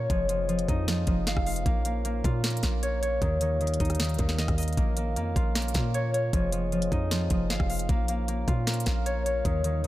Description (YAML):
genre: hip hop, trap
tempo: 154 BPM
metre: 4/4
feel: half-time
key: Bb dorian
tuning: A4 = 440 Hz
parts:
  - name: mellow French horn section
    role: sustained chords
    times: 0.0-9.9 s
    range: F3 to F5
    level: -37 LUFS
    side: equal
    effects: none
  - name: concert harp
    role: arpeggios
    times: 0.0-9.9 s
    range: Eb3 to F5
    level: -29 LUFS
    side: equal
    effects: low-pass filter, digital delay
  - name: hard-hitting 808-style bass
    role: bass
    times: 0.0-9.9 s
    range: F1 to Bb2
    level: -29 LUFS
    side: equal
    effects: none
  - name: trap drum kit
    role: drums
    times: 0.1-9.9 s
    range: hi-hat, kick drum, rim click, snare drum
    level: -28 LUFS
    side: equal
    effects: none
room: light reverb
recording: none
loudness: -24 LUFS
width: side -15 dB against mid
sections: 0.0-9.9 A section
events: none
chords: 0.1 Fm7; 1.7 Bbm; 3.2 Ebadd9; 4.8 Bbm; 6.3 Fm7; 7.9 Bbm